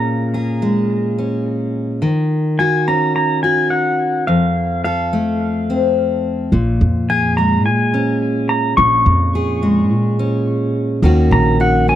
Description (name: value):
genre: acoustic folk duo or small band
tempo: 107 BPM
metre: 4/4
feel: straight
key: Bb minor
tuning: A4 = 435 Hz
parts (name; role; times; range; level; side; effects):
- pedal steel guitar; melody; 0.0-12.0 s; F5 to Db6; -18 LUFS; equal; tape echo
- fingerpicked steel-string acoustic guitar; accompaniment; 0.0-12.0 s; F2 to A4; -17 LUFS; left 1 dB; none
- upright bass; bass; 6.5-12.0 s; Bb1 to Bb2; -17 LUFS; equal; none
room: light reverb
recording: dry, close 1970s-style studio recording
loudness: -14 LUFS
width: side -11 dB against mid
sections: 0.0-12.0 A section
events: none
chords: 0.0 Bbm7; 2.0 Ebm7; 4.3 F; 6.5 Bbm7; 11.0 Ebm7